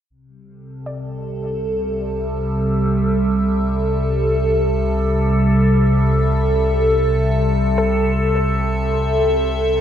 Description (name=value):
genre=ambient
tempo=free time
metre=none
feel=none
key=C major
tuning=A4 = 443 Hz
part: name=evolving wavetable pad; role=sustained chords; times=0.8-9.8 s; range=C3 to E5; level=-18 LUFS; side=equal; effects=phaser, built-in reverb
part: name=round analog bass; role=bass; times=0.1-9.8 s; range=C2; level=-22 LUFS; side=equal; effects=none
part: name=organ-like drone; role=drone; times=1.1-9.8 s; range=C3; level=-25 LUFS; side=left 1 dB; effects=ensemble chorus, built-in reverb
part: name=soft round pluck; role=arpeggios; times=0.9-9.8 s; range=A4 to D5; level=-30 LUFS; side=left 4 dB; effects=none
room=moderate plate reverb, RT60 2.7 s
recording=dreamy mix soaked in reverb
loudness=-16 LUFS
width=side -9 dB against mid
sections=0.1-9.8 A section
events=filter sweep on ambient pad 0.1-9.8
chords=0.1 C6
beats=free time